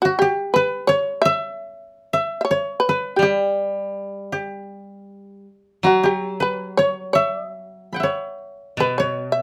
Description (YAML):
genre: japanese traditional, Japanese chamber music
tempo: 78-87 BPM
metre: 4/4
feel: rubato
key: unclear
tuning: A4 = 445 Hz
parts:
  - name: shamisen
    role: melody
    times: 0.0-9.4 s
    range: F#4 to E5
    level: -22 LUFS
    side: equal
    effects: none
  - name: koto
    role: second line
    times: 0.1-9.4 s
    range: F#4 to B5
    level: -24 LUFS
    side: equal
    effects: none
  - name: koto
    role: accompaniment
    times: 3.2-9.4 s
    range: B2 to G3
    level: -28 LUFS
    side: equal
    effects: none
room: light reverb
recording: none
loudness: -21 LUFS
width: mono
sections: 0.0-9.4 A section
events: none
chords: none